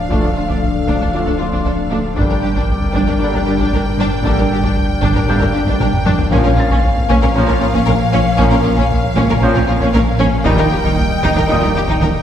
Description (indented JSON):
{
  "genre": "cinematic, hybrid orchestral and electronic film score",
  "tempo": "116 BPM",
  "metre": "4/4",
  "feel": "straight",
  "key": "unclear",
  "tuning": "A4 = 440 Hz",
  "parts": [
    { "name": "clear symphonic violin section", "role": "melody", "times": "0.0-12.2 s", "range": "F5 to G5", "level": "-23 LUFS", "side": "left 3 dB", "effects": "none" },
    { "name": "hollow soft pad", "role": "sustained chords", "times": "0.0-12.2 s", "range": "F3 to Eb5", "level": "-22 LUFS", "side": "left 1 dB", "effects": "chorus" },
    { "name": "pure sine sub bass", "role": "bass", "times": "0.0-12.2 s", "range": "D1 to Bb1", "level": "-23 LUFS", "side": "equal", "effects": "none" },
    { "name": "felt-muted upright piano", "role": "texture", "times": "0.0-12.2 s", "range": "G5 to A6", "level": "-29 LUFS", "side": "left 2 dB", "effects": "none" },
    { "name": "rich symphonic violin section", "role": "second line", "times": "0.1-12.1 s", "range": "Db4 to Bb4", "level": "-24 LUFS", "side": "left 2 dB", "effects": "none" },
    { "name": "rich symphonic viola section", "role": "accompaniment", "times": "0.1-12.1 s", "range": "Db4 to Eb4", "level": "-22 LUFS", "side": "left 1 dB", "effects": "none" },
    { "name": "clear trombone section", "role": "sustained chords", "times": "0.1-11.7 s", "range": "Bb2 to A3", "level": "-26 LUFS", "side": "right 2 dB", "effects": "none" },
    { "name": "warm French horn section", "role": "sustained chords", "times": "0.1-11.7 s", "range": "Bb3 to F4", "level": "-24 LUFS", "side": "left 2 dB", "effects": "none" },
    { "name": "rich studio double bass section", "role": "bass", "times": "0.1-12.1 s", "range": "G1 to Eb2", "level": "-22 LUFS", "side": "right 1 dB", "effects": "none" },
    { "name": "rich symphonic cello section", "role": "bass", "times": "0.1-12.1 s", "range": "D2 to Eb3", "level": "-21 LUFS", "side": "right 2 dB", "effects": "none" },
    { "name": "solo taiko drums", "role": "drums", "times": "0.1-12.2 s", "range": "none", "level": "-20 LUFS", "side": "equal", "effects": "none" }
  ],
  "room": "wet scoring stage reverb, RT60 1.6 s",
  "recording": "heard from further back in the room",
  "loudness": "-12 LUFS",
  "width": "side -9 dB against mid",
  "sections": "0.0-12.2 A section",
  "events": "drum fill 5.8-6.3",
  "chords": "0.0 Dm; 2.2 Gm; 6.3 Bbm; 10.5 Eb"
}